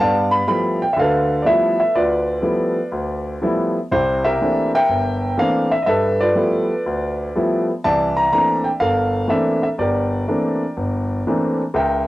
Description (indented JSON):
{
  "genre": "solo jazz",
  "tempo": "122 BPM",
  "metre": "4/4",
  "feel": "swing 68% on 8ths",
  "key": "G mixolydian",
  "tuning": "A4 = 443 Hz",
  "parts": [
    { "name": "clear grand piano", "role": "solo", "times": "0.0-12.1 s", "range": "G1 to B5", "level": "-16 LUFS", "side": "equal", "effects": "cassette tape" }
  ],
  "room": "wet booth ambience, RT60 0.2 s",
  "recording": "home recording on cassette",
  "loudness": "-16 LUFS",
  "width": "side -16 dB against mid",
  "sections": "0.0-12.1 A section",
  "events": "none",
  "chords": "0.0 G13; 3.9 C13; 5.9 G13; 7.8 C13",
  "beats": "0.48 0.97 1.46 | 1.95 2.44 2.93 3.42 | 3.91 4.40 4.89 5.38 | 5.87 6.36 6.85 7.34 | 7.83 8.32 8.81 9.30 | 9.79 10.27 10.76 11.25 | 11.74"
}